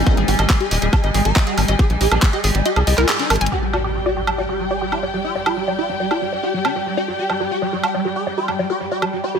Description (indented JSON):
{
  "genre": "psychedelic trance",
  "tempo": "139 BPM",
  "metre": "4/4",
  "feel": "straight",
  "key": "unclear",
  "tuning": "A4 = 437 Hz",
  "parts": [
    { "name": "overtone-sweeping drone", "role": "sustained chords", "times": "0.0-9.4 s", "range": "G3", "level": "-27 LUFS", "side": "right 3 dB", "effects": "chorus, built-in reverb, phaser, sidechain pumping" },
    { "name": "tight sequencer bass", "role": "bass", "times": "0.0-3.5 s", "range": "Eb1 to C2", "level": "-18 LUFS", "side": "equal", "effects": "none" },
    { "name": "zap and impact", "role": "sound effects", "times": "0.0-0.1, 3.5-5.2 s", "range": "none", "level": "-28 LUFS", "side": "equal", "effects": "none" },
    { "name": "dark studio string section", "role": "texture", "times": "0.0-9.4 s", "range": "G4 to Ab5", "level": "-26 LUFS", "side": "left 3 dB", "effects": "sidechain pumping" },
    { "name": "swarming rave lead", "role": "melody", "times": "0.1-9.4 s", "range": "G3 to Bb4", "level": "-23 LUFS", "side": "left 1 dB", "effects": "chorus, phaser, sidechain pumping, tape echo" },
    { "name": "woody wave-folded pluck", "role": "riff", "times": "0.1-9.4 s", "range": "G4 to Ab5", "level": "-26 LUFS", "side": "moving between left 4 dB and right 3 dB", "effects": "chorus, auto-pan, sidechain pumping, tape echo" },
    { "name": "electronic kick drum", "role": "drums", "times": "0.1-2.3 s", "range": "none", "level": "-16 LUFS", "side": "equal", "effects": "overdrive" },
    { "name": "garage drum kit", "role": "drums", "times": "0.1-9.1 s", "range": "handclaps, hi-hat, woodblock", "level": "-22 LUFS", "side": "right 2 dB", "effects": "overdrive" },
    { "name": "vowel-sweep wobble bass", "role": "second line", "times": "2.1-2.2 s", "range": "none", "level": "barely audible", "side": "none", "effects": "none" }
  ],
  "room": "moderate lush hall reverb, RT60 2.3 s",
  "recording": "none",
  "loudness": "-16 LUFS",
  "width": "side -7 dB against mid",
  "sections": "0.0-3.5 A section; 3.5-9.4 B section",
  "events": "drop 0.0-3.5; kick drops out 2.7-3.5; band accent 3.1; drum fill 3.3; impact 3.5-5.2; filter sweep on synth drone 3.5-9.4",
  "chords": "0.0 Ab5; 3.5 G5"
}